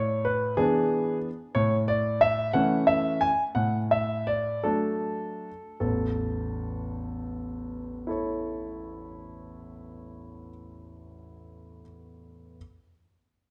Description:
classical-period piano sonatina; 49-62 BPM (dotted quarters); 6/8; rubato; A major; A4 = 438 Hz
warm concert grand piano; solo; 0.0-12.6 s; A1 to G#5; -27 LUFS; equal
moderate recital hall reverb, RT60 1.5 s; dark, warm production; -27 LUFS; mono
0.0-5.8 A section; 5.8-10.4 B section
slowing down 0.6-5.8
0.0 E7/A; 1.6 A; 3.6 D/A; 5.8 A

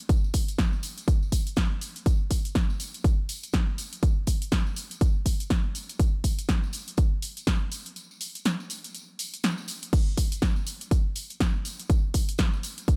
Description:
house; 122 BPM; 4/4; swing 59% on 16ths
punchy analog drum machine; drums; 0.0-13.0 s; crash cymbal, hi-hat, shaker, snare drum; -34 LUFS; equal; overdrive, studio ambience
electronic kick drum; drums; 0.1-13.0 s; -26 LUFS; equal; studio ambience
tambourine; percussion; 0.1-13.0 s; -45 LUFS; equal
little or no reverb; -27 LUFS; mono
0.0-13.0 A section
break 8.0-9.9

